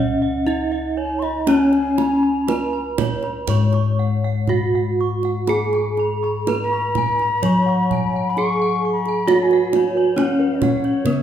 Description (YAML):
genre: Javanese gamelan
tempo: 60-70 BPM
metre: 4/4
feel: straight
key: Db slendro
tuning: A4 = 441 Hz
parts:
  - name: gamelan-type bronze metallophone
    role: melody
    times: 0.0-11.2 s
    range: Cb4-45c to Db5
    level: -20 LUFS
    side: right 1 dB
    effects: none
  - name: mellow bansuri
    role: second line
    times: 0.0-11.2 s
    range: Db5 to Db6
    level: -24 LUFS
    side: left 3 dB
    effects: none
  - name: gamelan-type bronze metallophone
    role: arpeggios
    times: 0.0-11.2 s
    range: Cb5-45c to Db6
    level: -29 LUFS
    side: right 4 dB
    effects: none
  - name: gamelan-type bossed gongs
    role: bass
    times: 0.0-11.2 s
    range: Db2 to Ab4+25c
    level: -23 LUFS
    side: left 2 dB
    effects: none
  - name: kendang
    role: percussion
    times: 0.5-11.2 s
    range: none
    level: -27 LUFS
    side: right 6 dB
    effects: none
  - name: gamelan-type bossed gongs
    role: arpeggios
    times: 5.5-11.2 s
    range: Cb5-45c to Db6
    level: -29 LUFS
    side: left 5 dB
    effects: none
room: wet recital hall reverb, RT60 1.3 s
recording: minimal, uncompressed stereo recording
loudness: -17 LUFS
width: side -10 dB against mid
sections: 0.0-11.2 A section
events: none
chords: none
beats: 0.47 | 1.47 2.47 3.47 4.48 | 5.48 6.47 7.43 8.37 | 9.28 10.18 11.05